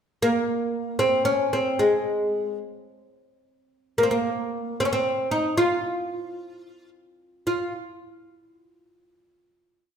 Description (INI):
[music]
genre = turkish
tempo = free time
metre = none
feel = none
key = F makam nihavent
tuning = A4 = 441 Hz
[part]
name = oud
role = solo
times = 0.2-7.7 s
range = Ab3 to F4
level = -22 LUFS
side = equal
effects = none
[sound]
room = wet recital hall reverb, RT60 1.3 s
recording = none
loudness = -22 LUFS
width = side -7 dB against mid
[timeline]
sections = 0.0-7.5 A section; 7.5-9.4 final note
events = none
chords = none